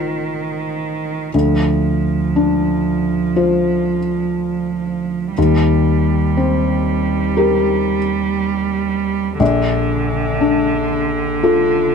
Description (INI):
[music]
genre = neoclassical piano and strings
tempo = 60 BPM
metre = 4/4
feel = rubato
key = Bb major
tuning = A4 = 440 Hz
[part]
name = rich cello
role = second line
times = 0.0-11.9 s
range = D3 to G3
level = -19 LUFS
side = right 6 dB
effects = none
[part]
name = felt-muted upright piano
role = accompaniment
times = 0.0-11.9 s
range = A1 to C5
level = -16 LUFS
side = left 2 dB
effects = none
[sound]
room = little or no reverb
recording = close, detailed microphones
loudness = -15 LUFS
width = side -6 dB against mid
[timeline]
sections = 0.0-11.9 A section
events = none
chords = 0.0 F7/A; 1.3 Dm7; 5.4 Eb6; 9.4 Bbmaj7